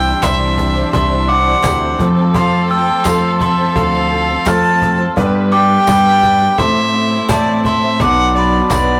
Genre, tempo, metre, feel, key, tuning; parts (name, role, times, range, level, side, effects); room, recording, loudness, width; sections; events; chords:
indie folk with a building arrangement; 85 BPM; 4/4; straight; A4 = 441 Hz
clear fiddle; melody; 0.0-9.0 s; D5 to A5; -19 LUFS; equal
glockenspiel with rubber mallets; second line; 0.0-9.0 s; A5 to F6; -20 LUFS; equal
bright upright piano; accompaniment; 0.0-9.0 s; F1 to E5; -27 LUFS; equal
picked twelve-string acoustic guitar; accompaniment; 0.0-9.0 s; A2 to C5; -26 LUFS; equal
dark chamber string section; sustained chords; 0.0-9.0 s; E3 to B4; -24 LUFS; equal
picked electric bass; bass; 0.0-9.0 s; B1 to A2; -20 LUFS; equal
cajon; drums; 0.2-8.9 s; -23 LUFS; equal
group handclap; percussion; 0.2-8.9 s; -29 LUFS; equal
tambourine; percussion; 0.2-8.9 s; -33 LUFS; equal
moderate small room reverb, RT60 0.5 s; rough rehearsal-room recording, warm saturation; -14 LUFS; mono
0.0-9.0 A section
0.0 Cadd9; 2.0 F; 5.2 G; 6.6 Am; 8.0 Bm